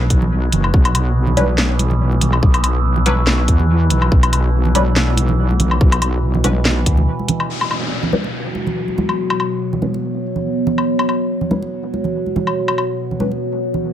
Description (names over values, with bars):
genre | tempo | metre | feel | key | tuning
deep dubstep | 142 BPM | 4/4 | swing 54% on 16ths, half-time | B minor | A4 = 438 Hz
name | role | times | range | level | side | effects
overtone-sweeping drone | sustained chords | 0.0-13.9 s | B2 to F#3 | -22 LUFS | right 1 dB | chorus, built-in reverb, phaser
wobble bass | bass | 0.0-7.1 s | F#1 to E2 | -16 LUFS | equal | chorus
electronic kick drum | drums | 0.1-7.0 s | none | -13 LUFS | equal | none
garage drum kit | drums | 0.1-12.9 s | hi-hat, snare drum, woodblock | -20 LUFS | left 2 dB | none
congas | percussion | 0.2-13.8 s | none | -23 LUFS | right 3 dB | dub echo
filtered dub chord stab | stabs | 1.4-13.3 s | F#3 to B4 | -24 LUFS | left 2 dB | phaser, lush chorus, cassette tape, dub echo
downlifter | sound effects | 7.5-10.9 s | none | -26 LUFS | left 1 dB | none
room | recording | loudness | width
light reverb | none | -14 LUFS | side -10 dB against mid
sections
0.0-7.5 A section; 7.5-13.9 B section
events
break 7.1-7.5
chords
0.0 B5